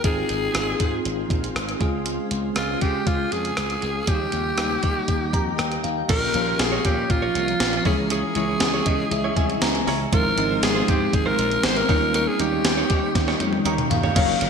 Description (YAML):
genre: 1980s-style pop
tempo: 119 BPM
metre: 4/4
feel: straight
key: unclear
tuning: A4 = 440 Hz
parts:
  - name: breathy alto saxophone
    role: melody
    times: 0.0-13.2 s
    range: F4 to C5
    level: -25 LUFS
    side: equal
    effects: digital delay
  - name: bell-like tine electric piano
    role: accompaniment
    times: 0.0-14.5 s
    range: Fb3 to Bb5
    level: -27 LUFS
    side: left 1 dB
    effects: medium stereo tremolo
  - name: granular cloud pad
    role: sustained chords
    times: 0.0-14.5 s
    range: Db3 to F5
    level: -31 LUFS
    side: equal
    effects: built-in reverb
  - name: glassy slap bass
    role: bass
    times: 0.0-14.5 s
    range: Gb1 to Eb3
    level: -30 LUFS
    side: equal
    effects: none
  - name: gated 80s digital drum machine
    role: drums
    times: 0.0-14.5 s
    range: crash cymbal, hi-hat, kick drum, rim click, snare drum, toms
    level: -24 LUFS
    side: equal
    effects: gated reverb, gated reverb snare
  - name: direct-recorded clean electric guitar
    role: riff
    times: 6.1-14.5 s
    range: Ab3 to Db5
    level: -30 LUFS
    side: right 4 dB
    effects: wide subtle chorus, digital delay
room: moderate lush hall reverb, RT60 1.5 s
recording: bright 1980s-style digital production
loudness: -20 LUFS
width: side -6 dB against mid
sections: 0.0-6.1 A section; 6.1-14.2 B section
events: tine electric piano fill 5.1-6.1, 8.6-10.1, 13.4-14.2; drum fill 13.2-14.2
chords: 0.0 Ab6; 1.8 Db; 4.1 Eb; 6.1 Bbm; 7.9 Dbm; 10.1 Ab6; 11.9 Eb7